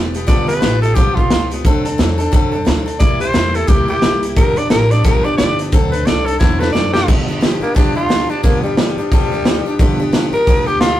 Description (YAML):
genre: rockabilly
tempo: 177 BPM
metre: 4/4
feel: swing 60% on 8ths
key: G mixolydian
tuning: A4 = 445 Hz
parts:
  - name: picked steel-string acoustic guitar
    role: accompaniment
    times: 0.0-11.0 s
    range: G2 to A4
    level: -20 LUFS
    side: left 1 dB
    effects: none
  - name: upright bass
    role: bass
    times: 0.0-10.9 s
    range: E1 to F#2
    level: -21 LUFS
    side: equal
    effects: none
  - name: raw garage drum kit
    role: drums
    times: 0.1-10.9 s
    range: crash cymbal, hi-hat, kick drum, snare drum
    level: -15 LUFS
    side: equal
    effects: none
  - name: growling tenor saxophone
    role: melody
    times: 0.3-11.0 s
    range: G3 to D5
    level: -18 LUFS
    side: left 1 dB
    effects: none
room: moderate studio reverb, RT60 0.5 s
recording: rough rehearsal-room recording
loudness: -12 LUFS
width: side -13 dB against mid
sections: 0.0-7.1 A section; 7.1-11.0 B section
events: drum fill 6.4-7.1; tenor saxophone solo 7.1-11.0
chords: 0.0 G7; 1.6 D7; 3.0 C7; 4.4 G7; 5.7 D7; 7.1 G7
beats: | 0.28 0.62 0.96 1.30 | 1.64 1.98 2.32 2.67 | 3.01 3.35 3.69 4.03 | 4.37 4.71 5.05 5.39 | 5.73 6.07 6.41 6.75 | 7.08 7.42 7.76 8.10 | 8.44 8.78 9.12 9.45 | 9.79 10.13 10.47 10.81